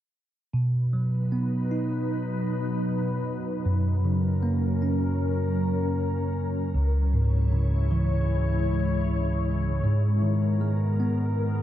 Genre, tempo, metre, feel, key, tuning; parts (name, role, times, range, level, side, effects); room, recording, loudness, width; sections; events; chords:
pop ballad; 78 BPM; 4/4; straight; B major; A4 = 441 Hz
bell-like tine electric piano; accompaniment; 0.5-11.6 s; C#2 to D#4; -24 LUFS; right 1 dB; phaser
glassy FM pad; sustained chords; 1.1-11.6 s; F#2 to C#5; -29 LUFS; left 2 dB; ensemble chorus, built-in reverb
light reverb; dry, close 1970s-style studio recording; -23 LUFS; side -12 dB against mid
0.5-11.6 A section
0.5 B; 3.7 F#; 6.7 C#m; 9.8 G#madd9